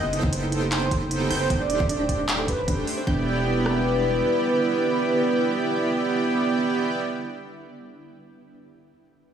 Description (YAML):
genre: future bass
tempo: 153 BPM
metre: 4/4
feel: half-time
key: E minor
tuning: A4 = 440 Hz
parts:
  - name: warm velvety synth lead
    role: melody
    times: 0.0-7.0 s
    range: B4 to D#5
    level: -27 LUFS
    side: equal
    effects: chorus, sidechain pumping, digital delay
  - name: shimmering ambient pad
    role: sustained chords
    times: 0.0-7.0 s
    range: C3 to E4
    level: -33 LUFS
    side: right 1 dB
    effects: chorus, built-in reverb, sidechain pumping
  - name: thumb-piano-like synth pluck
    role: arpeggios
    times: 0.0-3.3 s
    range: D4 to G5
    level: -31 LUFS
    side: right 2 dB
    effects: chorus, sidechain pumping, tape echo
  - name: wide unison pluck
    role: arpeggios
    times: 0.0-7.0 s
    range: G6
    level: -36 LUFS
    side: equal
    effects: sidechain pumping
  - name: soft supersaw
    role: riff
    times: 0.0-7.0 s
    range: A3 to G5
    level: -25 LUFS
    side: right 3 dB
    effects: sidechain pumping, tape echo
  - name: saturated sub bass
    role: bass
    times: 0.0-4.2 s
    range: D1 to F#1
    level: -28 LUFS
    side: equal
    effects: sidechain pumping
  - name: trap drum kit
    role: drums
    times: 0.1-3.0 s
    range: handclaps, hi-hat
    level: -29 LUFS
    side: equal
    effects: none
  - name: trap drum kit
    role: drums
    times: 0.2-3.8 s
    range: kick drum, rim click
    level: -26 LUFS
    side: equal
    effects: none
room: light reverb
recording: studio reverb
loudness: -21 LUFS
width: side -8 dB against mid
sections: 0.0-3.1 A section; 3.1-6.2 B section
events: drop 0.0-3.1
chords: 0.0 B7b9b13/F#; 1.5 D7sus4; 3.1 Em7